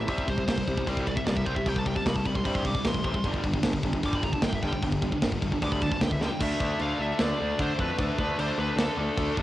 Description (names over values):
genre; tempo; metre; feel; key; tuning
heavy metal; 152 BPM; 4/4; straight; unclear; A4 = 440 Hz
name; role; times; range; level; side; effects
high-gain lead guitar; melody; 0.0-9.3 s; A4 to D6; -33 LUFS; equal; distortion
heavy high-gain guitar; riff; 0.0-9.4 s; G2 to D4; -31 LUFS; left 5 dB; distortion
tight distorted guitar; riff; 0.0-9.4 s; G2 to D4; -34 LUFS; right 6 dB; distortion
fuzz picked electric bass; bass; 0.0-9.4 s; G1 to D3; -32 LUFS; equal; overdrive
tight metal drum kit; drums; 0.1-9.4 s; crash cymbal, kick drum, snare drum; -30 LUFS; equal; cassette tape
room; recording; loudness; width
light reverb; home recording on cassette; -25 LUFS; side -14 dB against mid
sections
0.0-6.4 A section; 6.4-9.4 B section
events
lead electric guitar solo 0.0-6.4; drum fill 6.2; half time 6.4-9.4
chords
0.1 C5; 3.2 G5; 6.4 D5